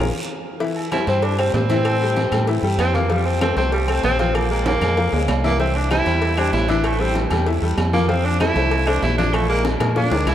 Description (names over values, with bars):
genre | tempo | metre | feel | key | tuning
latin, salsa | 192 BPM | 4/4 | straight | C major | A4 = 440 Hz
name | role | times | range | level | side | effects
bright upright piano | accompaniment | 0.0-10.3 s | E3 to F5 | -24 LUFS | left 4 dB | none
deep dub fingered electric bass | bass | 0.0-10.3 s | A1 to Bb2 | -21 LUFS | right 1 dB | none
congas | percussion | 0.6-10.3 s | none | -29 LUFS | left 1 dB | none
cowbell and bongos | percussion | 0.6-10.3 s | none | -30 LUFS | left 4 dB | none
guiro | percussion | 0.6-10.3 s | none | -36 LUFS | right 3 dB | none
agogo bells and timbales | percussion | 0.8-10.3 s | none | -28 LUFS | right 3 dB | none
clear tenor saxophone | melody | 0.9-10.3 s | G3 to E4 | -22 LUFS | right 2 dB | none
claves | percussion | 0.9-10.3 s | none | -36 LUFS | left 5 dB | none
room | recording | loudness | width
wet cathedral reverb, RT60 5.3 s | in a vast, echoing space | -17 LUFS | side -11 dB against mid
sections
0.6-10.3 A section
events
drum fill 0.0-0.6, 4.7-5.6, 9.6-10.3; band accent 0.0-0.6; tenor saxophone solo 0.6-10.3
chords
0.0 Bb5; 0.6 C; 1.9 Am7; 3.1 F; 4.3 Bb7(no3); 5.6 C; 6.8 A5; 8.1 F; 9.3 Bb7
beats
0.29 | 0.61 0.92 1.23 1.54 | 1.85 2.17 2.48 2.79 | 3.10 3.41 3.73 4.04 | 4.35 4.66 4.97 5.29 | 5.60 5.91 6.22 6.53 | 6.84 7.16 7.47 7.78 | 8.09 8.40 8.71 9.03 | 9.34 9.65 9.96 10.27